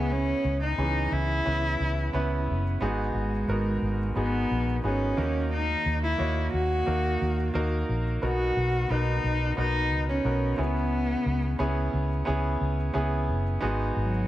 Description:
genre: piano-driven pop.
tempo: 89 BPM.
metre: 4/4.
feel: straight.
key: unclear.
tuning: A4 = 437 Hz.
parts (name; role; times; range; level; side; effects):
dark cello; melody; 0.0-14.3 s; F#3 to F#4; -29 LUFS; equal; none.
bright concert grand piano; accompaniment; 0.0-14.3 s; G#2 to D#5; -30 LUFS; right 2 dB; none.
vintage muted fingered electric bass; bass; 0.0-14.2 s; F#1 to D#2; -28 LUFS; equal; none.
room: small room ambience.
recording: none.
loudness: -24 LUFS.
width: side -14 dB against mid.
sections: 0.0-14.3 A section.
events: none.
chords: 0.0 C#m7; 2.8 G#m7; 5.2 D#m; 8.2 Bmaj7; 10.6 C#m7; 13.6 G#m7.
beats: | 0.11 0.79 1.46 2.14 | 2.81 3.49 4.17 4.84 | 5.52 6.19 6.87 7.54 | 8.22 8.90 9.57 10.25 | 10.92 11.60 12.27 12.94 | 13.62.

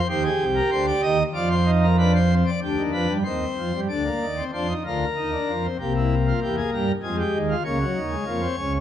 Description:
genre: classical, baroque-style 3-part fugue for pipe organ.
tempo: 95 BPM.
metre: 3/4.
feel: straight.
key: unclear.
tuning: A4 = 440 Hz.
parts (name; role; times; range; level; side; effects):
pipe organ, principal chorus; solo; 0.0-8.8 s; C2 to Eb5; -20 LUFS; equal; none.
room: wet recital hall reverb, RT60 1.6 s.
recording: none.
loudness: -20 LUFS.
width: side -10 dB against mid.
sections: 0.0-3.9 A section; 3.9-8.8 B section.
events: none.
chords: 0.1 Cm; 1.4 F7sus4; 2.0 G7/F; 3.3 Cm/Eb; 3.9 Bb/D; 5.2 Eb5; 5.8 C7; 7.0 Fm; 7.7 Bbm/Db.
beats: | 0.10 0.73 1.36 | 1.99 2.62 3.25 | 3.90 4.53 5.17 | 5.79 6.41 7.03 | 7.65 8.27.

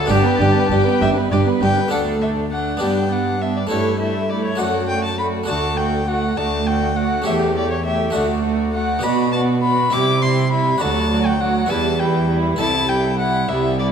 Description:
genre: classical, baroque-style concerto movement with solo episodes.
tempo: 67 BPM (dotted quarters).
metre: 6/8.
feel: straight.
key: D major.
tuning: A4 = 438 Hz.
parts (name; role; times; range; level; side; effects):
rich chamber violin section; melody; 0.0-13.9 s; G4 to A5; -32 LUFS; left 8 dB; none.
rich violin; melody; 0.0-13.9 s; G4 to D6; -23 LUFS; left 4 dB; none.
warm chamber violin section; second line; 0.0-13.9 s; D4 to B4; -25 LUFS; equal; none.
dark chamber viola section; accompaniment; 0.0-13.9 s; F#3 to D4; -24 LUFS; right 4 dB; none.
harpsichord; accompaniment; 0.0-13.9 s; C2 to E5; -24 LUFS; left 2 dB; none.
dark chamber cello section; bass; 0.1-13.9 s; C2 to C3; -22 LUFS; right 3 dB; none.
warm studio double bass section; bass; 0.1-1.7 s; G1; -22 LUFS; right 4 dB; none.
room: moderate scoring stage reverb, RT60 1.7 s.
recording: none.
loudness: -16 LUFS.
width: side -7 dB against mid.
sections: 0.0-1.9 A section; 1.9-13.9 B section.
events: none.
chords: 0.1 G; 1.9 D5; 2.8 G; 3.7 A5/G; 4.6 D/F#; 5.5 D; 7.3 A7/E; 8.2 D; 9.0 Bm; 9.9 C; 10.8 D; 11.7 Em; 12.6 Am7/C.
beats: | 0.10 1.01 | 1.92 2.82 | 3.71 4.60 | 5.49 6.38 | 7.27 8.16 | 9.04 9.93 | 10.81 11.70 | 12.59 13.49.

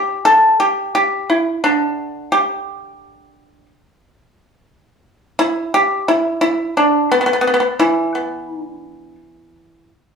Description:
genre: chinese traditional, Chinese solo plucked strings.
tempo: 87 BPM.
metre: 4/4.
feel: rubato.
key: unclear.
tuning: A4 = 441 Hz.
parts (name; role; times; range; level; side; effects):
pipa; solo; 0.0-9.9 s; D3 to A4; -14 LUFS; equal; none.
room: moderate stone room reverb, RT60 1.1 s.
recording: band playing live in one room, studio reverb.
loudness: -14 LUFS.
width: side -6 dB against mid.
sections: 0.0-10.2 A section.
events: none.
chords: none.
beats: 0.27 0.97 1.66 | 2.35 3.04 3.71 4.39 | 5.06 5.74 6.42 7.11 | 7.80 8.49 9.19.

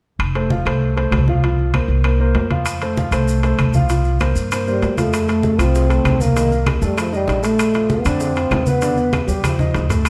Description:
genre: Afro-Cuban jazz.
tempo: 195 BPM.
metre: 4/4.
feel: straight.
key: F major.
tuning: A4 = 438 Hz.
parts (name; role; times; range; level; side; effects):
upright bass; bass; 0.2-10.1 s; F1 to G2; -21 LUFS; equal; none.
claves; percussion; 0.2-10.1 s; none; -35 LUFS; equal; none.
congas; percussion; 0.2-10.1 s; none; -26 LUFS; equal; none.
timbales; percussion; 0.2-10.1 s; none; -29 LUFS; equal; none.
warm grand piano; accompaniment; 0.3-10.1 s; D3 to F5; -24 LUFS; equal; none.
maracas; percussion; 2.7-10.1 s; none; -38 LUFS; equal; none.
breathy trombone; melody; 4.7-9.9 s; F3 to C4; -22 LUFS; equal; none.
bongos; percussion; 5.1-10.1 s; none; -33 LUFS; equal; none.
room: moderate recital hall reverb, RT60 1.7 s.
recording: none.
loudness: -18 LUFS.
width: mono.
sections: 0.2-5.1 A section; 5.1-10.1 B section.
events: drum fill 9.4-10.1.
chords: 0.2 F; 1.4 C7sus4; 2.7 F; 3.9 C7sus4; 5.1 F; 6.4 Cm7; 7.0 F7; 7.6 Bbmaj9; 8.8 Em7; 9.4 Eb.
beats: | 0.20 0.51 0.81 1.12 | 1.43 1.74 2.05 2.35 | 2.66 2.97 3.28 3.59 | 3.90 4.20 4.51 4.82 | 5.13 5.43 5.74 6.05 | 6.36 6.67 6.97 7.28 | 7.59 7.90 8.21 8.51 | 8.82 9.13 9.44 9.74 | 10.05.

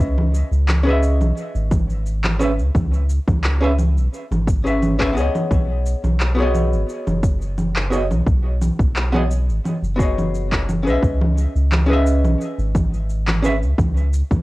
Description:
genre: sunset chillout.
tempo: 87 BPM.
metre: 4/4.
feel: straight.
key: unclear.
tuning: A4 = 443 Hz.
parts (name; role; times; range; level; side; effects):
archtop guitar, miked and amplified; accompaniment; 0.0-13.6 s; B3 to E5; -22 LUFS; equal; auto-pan, vintage 12-bit sampler grit, cassette tape, tape echo, plate reverb.
round analog bass; bass; 0.0-14.4 s; F#1 to C#2; -19 LUFS; equal; none.
electronic cabasa, congas and handclaps; drums; 0.0-14.4 s; none; -24 LUFS; equal; overdrive, cassette tape.
electronic kick drum; drums; 1.7-14.4 s; none; -20 LUFS; equal; overdrive, cassette tape.
room: light reverb.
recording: home recording on cassette.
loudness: -16 LUFS.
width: side -19 dB against mid.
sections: 0.0-14.4 A section.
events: none.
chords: 0.0 C#m9; 5.5 B69; 11.0 C#m9.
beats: 0.68 1.37 2.06 | 2.75 3.44 4.13 4.82 | 5.51 6.20 6.89 7.58 | 8.27 8.96 9.65 10.34 | 11.03 11.71 12.40 13.09 | 13.78.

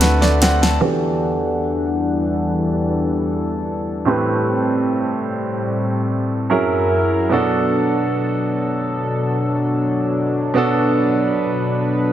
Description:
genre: contemporary R&B.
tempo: 74 BPM.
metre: 4/4.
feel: straight.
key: E minor.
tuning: A4 = 441 Hz.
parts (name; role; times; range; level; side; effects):
bright grand piano; accompaniment; 0.0-12.1 s; A2 to A5; -20 LUFS; right 2 dB; low-pass filter.
chorused pulse-width pad; sustained chords; 0.0-12.1 s; E2 to A5; -19 LUFS; left 1 dB; low-pass filter.
flamenco guitar; arpeggios; 0.0-1.4 s; D3 to B4; -27 LUFS; left 4 dB; tape echo.
warm 808-style bass; bass; 0.0-0.8 s; D2; -17 LUFS; equal; none.
smooth R&B drum kit; drums; 0.0-0.8 s; hi-hat, snare drum; -19 LUFS; equal; none.
room: light reverb.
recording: none.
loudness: -16 LUFS.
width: side -11 dB against mid.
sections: 0.8-12.1 A section.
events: drum fill 0.0-0.8; filter sweep 0.8-12.1.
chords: 0.0 D13; 0.8 Em11; 4.1 Am7; 6.5 F#7; 7.3 Bm7.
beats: 0.01 | 0.82 1.63 2.44 3.25 | 4.06 4.87 5.68 6.50 | 7.31 8.12 8.93 9.74 | 10.55 11.36.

